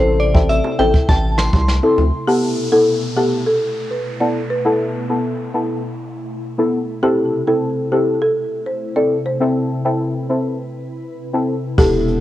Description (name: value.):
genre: dancehall.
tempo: 101 BPM.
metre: 4/4.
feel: straight.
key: A minor.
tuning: A4 = 440 Hz.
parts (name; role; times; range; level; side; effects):
glassy synth bell; second line; 0.0-2.2 s; C5 to C6; -21 LUFS; equal; chorus, tape echo.
deep mellow chord stab; accompaniment; 0.0-12.2 s; B3 to A4; -18 LUFS; left 2 dB; chorus, sidechain pumping.
glassy FM pad; sustained chords; 0.1-12.2 s; B2 to B4; -27 LUFS; left 1 dB; ensemble chorus, built-in reverb, sidechain pumping.
round analog bass; bass; 0.0-2.1, 11.8-12.2 s; E1 to D2; -18 LUFS; equal; none.
jazz brush drum kit; drums; 0.2-2.1, 11.8-12.2 s; crash cymbal, hi-hat, kick drum, rim click, snare drum; -16 LUFS; equal; cassette tape.
bongos; percussion; 0.3-2.1 s; none; -29 LUFS; right 5 dB; none.
folk marimba with medium mallets; melody; 2.3-12.0 s; G4 to D5; -20 LUFS; right 1 dB; cassette tape, tape echo.
downlifter; sound effects; 2.3-7.0 s; none; -33 LUFS; equal; none.
room: light reverb, small room ambience.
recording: home recording on cassette.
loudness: -15 LUFS.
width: side -14 dB against mid.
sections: 0.0-2.3 A section; 2.3-11.8 B section.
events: none.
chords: 0.0 Am; 2.3 Esus4; 7.0 Am.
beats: 0.49 1.09 1.68 | 2.28 2.87 3.46 4.06 | 4.65 5.25 5.84 6.43 | 7.03 7.62 8.22 8.81 | 9.40 10.00 10.59 11.19 | 11.78.